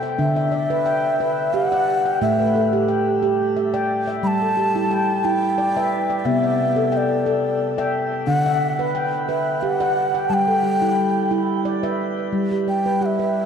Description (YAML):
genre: world meditative, meditative tuned percussion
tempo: 89 BPM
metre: 3/4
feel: swing 54% on 16ths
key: G major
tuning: A4 = 440 Hz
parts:
  - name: handpan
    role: arpeggios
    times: 0.0-13.5 s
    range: A2 to G5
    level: -20 LUFS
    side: equal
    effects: shimmer reverb, diffuse ambient delay
  - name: breathy mellow bass bansuri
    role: melody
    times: 0.2-13.5 s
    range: D5 to B5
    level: -22 LUFS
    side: left 1 dB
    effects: shimmer reverb, diffuse ambient delay
room: wet church reverb, RT60 3.2 s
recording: dark, warm production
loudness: -18 LUFS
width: side -7 dB against mid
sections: 0.0-12.3 A section; 12.3-13.5 B section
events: none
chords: 0.2 D; 2.2 A5; 4.2 G; 6.3 C; 8.3 D; 10.3 G